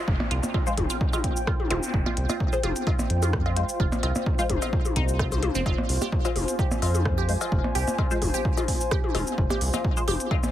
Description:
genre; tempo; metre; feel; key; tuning
minimal techno; 129 BPM; 4/4; swing 54% on 16ths; F minor; A4 = 440 Hz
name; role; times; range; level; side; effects
downlifter and zap; sound effects; 0.0-1.9 s; none; -37 LUFS; equal; none
warbly tape-like pad; texture; 0.0-10.5 s; F4 to Ab5; -33 LUFS; equal; chorus, built-in reverb, sidechain pumping
round analog bass; bass; 0.1-10.2 s; Eb1 to F2; -26 LUFS; equal; sidechain pumping
electronic kick drum; drums; 0.1-10.4 s; none; -26 LUFS; equal; none
electronic percussion blips, cowbell and toms; percussion; 0.2-10.5 s; none; -31 LUFS; left 2 dB; digital delay
resonant blip pluck; riff; 0.3-10.3 s; C4 to C5; -33 LUFS; right 2 dB; phaser, sidechain pumping, digital delay
minimal click drum kit; drums; 0.3-10.5 s; hi-hat, rim click, shaker; -32 LUFS; left 1 dB; none
filtered dub chord stab; stabs; 0.7-10.0 s; Ab3 to C5; -33 LUFS; left 2 dB; phaser, ensemble chorus, cassette tape, digital delay
room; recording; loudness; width
light reverb; heavily compressed radio sound; -22 LUFS; side -12 dB against mid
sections
0.0-10.5 A section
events
none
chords
0.0 Fm

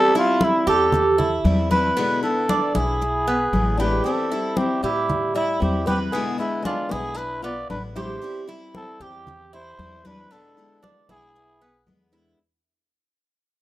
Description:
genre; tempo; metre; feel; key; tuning
latin, Cuban son and guajira; 115 BPM; 4/4; straight; A minor; A4 = 439 Hz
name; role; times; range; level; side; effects
trumpet with cup mute; melody; 0.0-11.8 s; E4 to D5; -23 LUFS; equal; plate reverb
picked steel-string acoustic guitar; accompaniment; 0.0-12.4 s; B2 to E4; -28 LUFS; left 4 dB; none
Cuban tres; arpeggios; 0.0-12.4 s; B3 to B4; -25 LUFS; right 4 dB; none
congas; percussion; 0.1-12.1 s; none; -26 LUFS; left 1 dB; none
upright bass; bass; 0.7-12.3 s; A1 to A2; -27 LUFS; equal; none
flamenco guitar; second line; 3.8-11.8 s; G3 to F4; -30 LUFS; left 4 dB; none
room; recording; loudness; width
moderate studio reverb, RT60 0.6 s; rough home demo mix; -19 LUFS; side -15 dB against mid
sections
0.0-12.4 A section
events
fade-out 0.0-12.4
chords
0.0 Am7; 2.0 E7; 4.1 Am7; 6.1 E7; 8.2 Am9/E (rootless); 10.3 E7

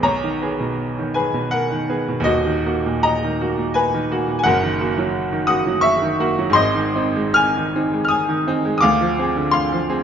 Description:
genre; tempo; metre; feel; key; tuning
classical, romantic character piece for solo piano; 71-88 BPM; 3/4; rubato; unclear; A4 = 440 Hz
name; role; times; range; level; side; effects
bright baby grand piano; solo; 0.0-10.0 s; D#1 to F6; -17 LUFS; equal; none
room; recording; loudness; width
moderate recital hall reverb, RT60 1.6 s; nothing above 7.5 kHz; -17 LUFS; side -8 dB against mid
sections
0.0-10.0 A section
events
none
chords
0.1 G#m/B; 2.3 D#m; 4.5 D#m/F#; 6.6 Ab; 8.8 Dm7b5

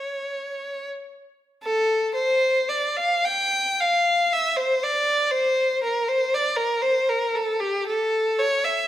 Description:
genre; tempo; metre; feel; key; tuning
classical, free, expressive piece for unaccompanied violin; 20-41 BPM (dotted quarters); 6/8; rubato; unclear; A4 = 440 Hz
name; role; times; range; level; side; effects
rich violin; solo; 0.0-8.9 s; G4 to G5; -20 LUFS; equal; none
room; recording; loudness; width
moderate recital hall reverb, RT60 1.4 s; none; -20 LUFS; side -12 dB against mid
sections
0.0-1.6 A section; 1.6-8.9 A section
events
none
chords
none

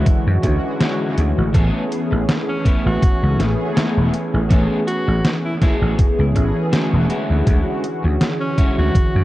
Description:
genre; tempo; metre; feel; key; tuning
vaporwave; 81 BPM; 4/4; swing 55% on 16ths; A major; A4 = 440 Hz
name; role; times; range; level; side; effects
mellow synth brass; accompaniment; 0.0-9.2 s; D3 to G#4; -22 LUFS; equal; ensemble chorus, dub echo
electric guitar at the edge of break-up; riff; 0.0-9.0 s; G#3 to G#4; -27 LUFS; left 1 dB; wide subtle chorus, dub echo
detuned 8-bit digital drum machine; drums; 0.1-9.1 s; hi-hat, snare drum; -23 LUFS; equal; dub echo
electronic kick drum; drums; 0.1-9.1 s; none; -16 LUFS; equal; none
vintage slap bass; bass; 0.3-9.2 s; E1 to F#2; -17 LUFS; equal; none
bright alto saxophone; melody; 2.5-9.2 s; C#4 to F#4; -28 LUFS; equal; tape echo
room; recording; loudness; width
light reverb, digital ambience; echo-heavy mix, cassette tape; -15 LUFS; side -16 dB against mid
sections
0.0-9.2 A section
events
none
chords
0.0 Dmaj9#11; 1.5 Amaj9; 7.1 Dmaj9#11

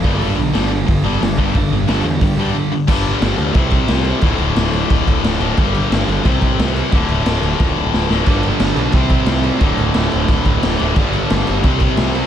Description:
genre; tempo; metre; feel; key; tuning
punk rock; 178 BPM; 4/4; straight; unclear; A4 = 437 Hz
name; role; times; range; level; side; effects
cranked stack guitar; riff; 0.0-2.9, 8.3-12.3 s; D2 to C4; -23 LUFS; right 10 dB; overdrive
high-gain distorted guitar; riff; 0.0-12.3 s; D2 to C4; -22 LUFS; right 2 dB; distortion
tight distorted guitar; riff; 0.0-12.3 s; D2 to C4; -21 LUFS; left 13 dB; distortion
fuzz picked electric bass; bass; 0.0-12.2 s; D1 to G2; -20 LUFS; equal; overdrive
raw garage drum kit; drums; 0.0-12.2 s; crash cymbal, hi-hat, kick drum, snare drum; -17 LUFS; equal; none
room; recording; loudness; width
little or no reverb; none; -13 LUFS; side -10 dB against mid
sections
0.0-2.9 A section; 2.9-12.3 B section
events
break 2.6-2.9; drum fill 7.6-8.3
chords
0.0 G5; 3.6 C5; 4.2 D5; 5.6 G5; 6.2 C5; 6.9 D5; 8.3 G; 8.9 C5; 9.6 D5; 11.0 G5; 11.6 C5

